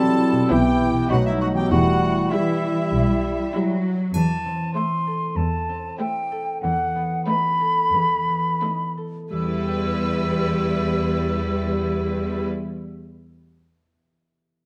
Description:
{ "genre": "cinematic, playful, whimsical film cue", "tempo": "84-100 BPM", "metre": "4/4", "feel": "straight", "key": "E minor", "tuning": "A4 = 441 Hz", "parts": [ { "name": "vibraphone with medium mallets", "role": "melody", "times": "0.0-3.5 s", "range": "G3 to C4", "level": "-26 LUFS", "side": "equal", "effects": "none" }, { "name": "warm studio violin section", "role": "melody", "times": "0.0-12.5 s", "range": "B4 to B5", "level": "-36 LUFS", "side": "equal", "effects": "none" }, { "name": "mellow clarinet", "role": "second line", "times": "0.0-3.8 s", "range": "D#4 to E4", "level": "-32 LUFS", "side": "equal", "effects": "none" }, { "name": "mellow cor anglais", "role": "second line", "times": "0.0-3.5 s", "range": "E4 to A4", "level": "-30 LUFS", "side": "equal", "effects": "none" }, { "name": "rich studio violin section", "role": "second line", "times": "0.0-12.5 s", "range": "D#4 to A5", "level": "-37 LUFS", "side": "equal", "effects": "none" }, { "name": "silver concert flute", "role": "second line", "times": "0.0-12.4 s", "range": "E5 to E6", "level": "-28 LUFS", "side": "equal", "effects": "none" }, { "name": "rich studio viola section", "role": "accompaniment", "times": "0.0-12.4 s", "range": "E3 to E4", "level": "-29 LUFS", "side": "equal", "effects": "none" }, { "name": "warm bassoon", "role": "accompaniment", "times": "0.0-3.8 s", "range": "E3 to G3", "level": "-30 LUFS", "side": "equal", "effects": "none" }, { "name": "dark French horn section", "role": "sustained chords", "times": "0.0-3.8 s", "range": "E3 to E4", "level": "-29 LUFS", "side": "equal", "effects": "none" }, { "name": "concert harp", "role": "arpeggios", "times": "0.0-13.2 s", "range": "B2 to G5", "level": "-32 LUFS", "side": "equal", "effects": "none" }, { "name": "rich studio cello section", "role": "bass", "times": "0.5-12.5 s", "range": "E2 to G3", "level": "-28 LUFS", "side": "equal", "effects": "none" }, { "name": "rich studio double bass section", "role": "bass", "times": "0.5-3.4 s", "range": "E1 to B1", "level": "-28 LUFS", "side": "equal", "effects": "none" }, { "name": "triangle", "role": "percussion", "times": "4.1-5.3 s", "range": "none", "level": "-45 LUFS", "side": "equal", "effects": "none" } ], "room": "moderate recital hall reverb, RT60 1.4 s", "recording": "close, detailed microphones", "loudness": "-22 LUFS", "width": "mono", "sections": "0.0-4.1 A section; 4.1-9.3 B section; 9.3-12.1 C section", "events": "slowing down 2.9-9.3", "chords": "0.5 Em/B; 1.1 B; 1.7 Em; 4.1 Am/E; 6.6 B7/E; 9.3 Em", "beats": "0.50 1.10 | 1.71 2.31 2.92 3.53 | 4.14 4.75 5.37 5.99 | 6.62 7.27 7.93 8.61 | 9.32 10.02 10.73 11.44" }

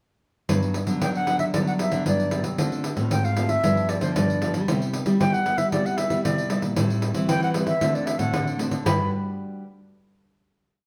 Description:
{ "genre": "samba and choro", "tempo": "115 BPM", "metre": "4/4", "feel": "straight", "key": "G major", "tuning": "A4 = 440 Hz", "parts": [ { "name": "nylon-string guitar", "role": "accompaniment", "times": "0.5-9.6 s", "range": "G2 to B4", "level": "-30 LUFS", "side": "equal", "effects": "none" }, { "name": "nylon-string guitar", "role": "bass", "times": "0.5-9.1 s", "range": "G2 to G3", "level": "-29 LUFS", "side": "equal", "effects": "none" }, { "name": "pandeiro", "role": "percussion", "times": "0.5-9.0 s", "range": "none", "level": "-30 LUFS", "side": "equal", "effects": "none" }, { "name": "silver concert flute", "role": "melody", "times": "1.0-9.1 s", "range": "C5 to B5", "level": "-28 LUFS", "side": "equal", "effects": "none" } ], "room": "moderate large studio reverb, RT60 1.2 s", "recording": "band playing live in one room", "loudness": "-24 LUFS", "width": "mono", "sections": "0.5-8.9 groove; 8.9-10.9 final chord", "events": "none", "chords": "0.5 Gmaj7; 2.6 Dm7; 3.6 G7; 4.7 Cmaj7; 6.8 Am7; 7.8 D7; 8.9 Gmaj7", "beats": "| 0.49 1.02 1.54 2.06 | 2.59 3.11 3.63 4.16 | 4.68 5.20 5.72 6.25 | 6.77 7.29 7.82 8.34 | 8.86 9.38" }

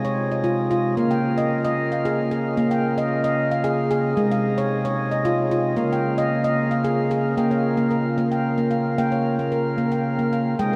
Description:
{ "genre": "world meditative, meditative tuned percussion", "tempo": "113 BPM", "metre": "3/4", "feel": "straight", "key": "Bb minor", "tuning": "A4 = 439 Hz", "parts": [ { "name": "pipe organ, sparkling flutes", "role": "sustained chords", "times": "0.0-10.8 s", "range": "C3 to F4", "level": "-25 LUFS", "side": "equal", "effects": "none" }, { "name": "handpan", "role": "arpeggios", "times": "0.0-10.8 s", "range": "Ab3 to G5", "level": "-24 LUFS", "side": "equal", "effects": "none" } ], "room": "wet huge ambient reverb, RT60 7.9 s", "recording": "dreamy mix soaked in reverb", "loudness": "-22 LUFS", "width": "mono", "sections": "0.0-7.4 A section; 7.4-10.8 B section", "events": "none", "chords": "0.0 Ab; 1.0 Bbm; 4.2 Ab; 5.8 Bbm", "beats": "0.45 | 0.98 1.51 2.04 | 2.58 3.11 3.64 | 4.17 4.71 5.24 | 5.77 6.30 6.84 | 7.37 7.90 8.44 | 8.97 9.51 10.04 | 10.58" }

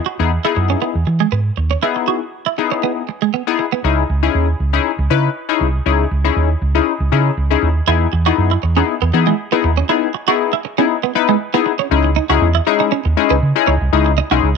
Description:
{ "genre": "pop", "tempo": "119 BPM", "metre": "4/4", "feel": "straight", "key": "C# minor", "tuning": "A4 = 442 Hz", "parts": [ { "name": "twelve-string electric guitar", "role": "riff", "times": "0.1-3.8, 7.9-14.4 s", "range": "G#3 to F#4", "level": "-19 LUFS", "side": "right 16 dB", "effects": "lush chorus" }, { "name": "funky polysynth comp", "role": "accompaniment", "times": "0.2-14.5 s", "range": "G#3 to B4", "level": "-17 LUFS", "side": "left 12 dB", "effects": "chorus" }, { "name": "hollow-body short-scale fingered electric bass", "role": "bass", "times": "0.2-14.6 s", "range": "B1 to E3", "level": "-16 LUFS", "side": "right 2 dB", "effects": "none" } ], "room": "light reverb", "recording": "1960s-style stereo with parts hard left and right", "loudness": "-14 LUFS", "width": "side -5 dB against mid", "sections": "0.0-3.8 A section; 3.8-11.9 B section; 11.9-14.6 C section", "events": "none", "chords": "0.0 Emaj7; 3.8 C#madd9; 7.9 Emaj7; 11.9 C#madd9", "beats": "0.31 0.82 1.32 | 1.83 2.33 2.83 3.34 | 3.84 4.35 4.85 5.36 | 5.86 6.36 6.87 7.37 | 7.88 8.38 8.88 9.39 | 9.89 10.40 10.90 11.41 | 11.91 12.41 12.92 13.42 | 13.93 14.43" }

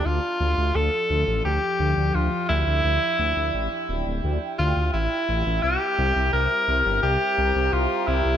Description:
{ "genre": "synthwave", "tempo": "86 BPM", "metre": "4/4", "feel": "straight", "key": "D minor", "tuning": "A4 = 442 Hz", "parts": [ { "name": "clear tenor saxophone", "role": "melody", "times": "0.0-8.4 s", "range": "E4 to Bb4", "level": "-23 LUFS", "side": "equal", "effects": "ping-pong delay" }, { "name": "wide detuned saw bass", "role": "bass", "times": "0.0-8.4 s", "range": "D1 to D2", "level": "-24 LUFS", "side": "equal", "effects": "chorus" }, { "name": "chorused pulse-width pad", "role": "sustained chords", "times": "0.1-8.4 s", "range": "F3 to Bb5", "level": "-32 LUFS", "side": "equal", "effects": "none" } ], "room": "moderate plate reverb, RT60 2.9 s", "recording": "bright 1980s-style digital production", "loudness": "-20 LUFS", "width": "side -9 dB against mid", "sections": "0.1-8.4 A section", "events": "filter sweep on analog synth pad 0.1-8.4", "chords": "0.1 Dmadd9; 5.6 C7", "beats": "| 0.06 0.75 1.45 2.15 | 2.85 3.54 4.24 4.94 | 5.64 6.33 7.03 7.73" }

